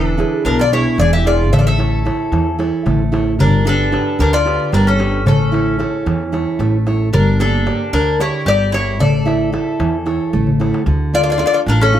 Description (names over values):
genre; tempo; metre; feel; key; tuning
greek folk, Greek bouzouki band; 225 BPM (eighths); 7/8; straight; unclear; A4 = 438 Hz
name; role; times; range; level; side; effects
Greek bouzouki; melody; 0.0-12.0 s; A4 to E5; -19 LUFS; left 3 dB; none
mandolin; second line; 0.0-12.0 s; C#4 to A4; -22 LUFS; left 1 dB; none
fingerpicked steel-string acoustic guitar; accompaniment; 0.0-12.0 s; B2 to E5; -18 LUFS; right 3 dB; none
upright bass; bass; 0.0-12.0 s; E1 to E2; -18 LUFS; equal; none
darbuka; percussion; 0.1-10.9 s; none; -21 LUFS; left 2 dB; none
room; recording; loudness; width
moderate small room reverb, RT60 0.5 s; none; -13 LUFS; side -11 dB against mid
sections
0.0-10.9 A section; 10.9-12.0 B section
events
drum fill 10.3-10.9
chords
0.0 E7; 1.5 A; 3.4 G; 5.3 A; 7.1 Gm; 9.0 A; 10.9 Dm